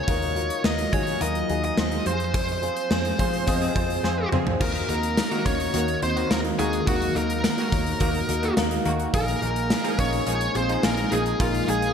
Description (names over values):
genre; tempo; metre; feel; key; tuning
1980s-style pop; 106 BPM; 4/4; straight; Eb dorian; A4 = 440 Hz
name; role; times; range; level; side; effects
bluesy overdriven lead guitar; melody; 0.0-11.9 s; F4 to Eb5; -27 LUFS; left 1 dB; distortion
clear grand piano; accompaniment; 0.0-11.9 s; Bb3 to Eb5; -29 LUFS; left 1 dB; analog chorus
glassy FM pad; sustained chords; 0.0-11.9 s; Eb3 to Ab4; -34 LUFS; left 2 dB; ensemble chorus, built-in reverb, phaser
vintage muted fingered electric bass; bass; 0.1-11.9 s; Bb1 to F3; -29 LUFS; equal; none
gated 80s drum kit; drums; 0.1-11.9 s; crash cymbal, hi-hat, kick drum, snare drum, tambourine, toms; -26 LUFS; equal; gated reverb
funky polysynth comp; stabs; 3.6-11.4 s; Eb3 to Ab4; -32 LUFS; left 1 dB; chorus, ping-pong delay
marimba with hard mallets; second line; 4.6-11.9 s; F3 to Db4; -35 LUFS; right 4 dB; none
room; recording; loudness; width
moderate plate reverb, RT60 2.4 s; bright 1980s-style digital production; -21 LUFS; side -7 dB against mid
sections
0.0-4.6 A section; 4.6-11.9 B section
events
band accent 2.3-4.6; drum fill 4.0-4.6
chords
0.1 Ebmadd9; 2.1 Fm; 4.6 Ebm; 9.1 Bb7sus4